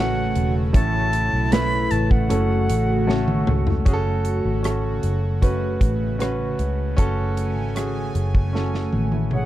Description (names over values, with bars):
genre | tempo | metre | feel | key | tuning
pop ballad | 77 BPM | 4/4 | straight | F# minor | A4 = 440 Hz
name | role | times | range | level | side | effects
bright reedy concert flute | melody | 0.0-3.5, 9.3-9.5 s | F#5 to B5 | -26 LUFS | equal | none
warm concert grand piano | accompaniment | 0.0-9.5 s | A2 to C#5 | -26 LUFS | right 2 dB | none
airy breathy pad | sustained chords | 0.0-9.5 s | C#3 to G#5 | -28 LUFS | equal | chorus, tremolo
vintage muted fingered electric bass | bass | 0.0-9.5 s | E1 to C#2 | -23 LUFS | equal | none
modern studio drum kit | drums | 0.4-9.5 s | hi-hat, kick drum, rim click, snare drum, toms | -21 LUFS | equal | none
room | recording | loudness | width
small room ambience | none | -19 LUFS | side -14 dB against mid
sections
0.0-3.9 A section; 3.9-9.5 B section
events
drum fill 3.1-3.9, 8.5-9.5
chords
0.0 F#m; 0.7 A; 2.3 F#m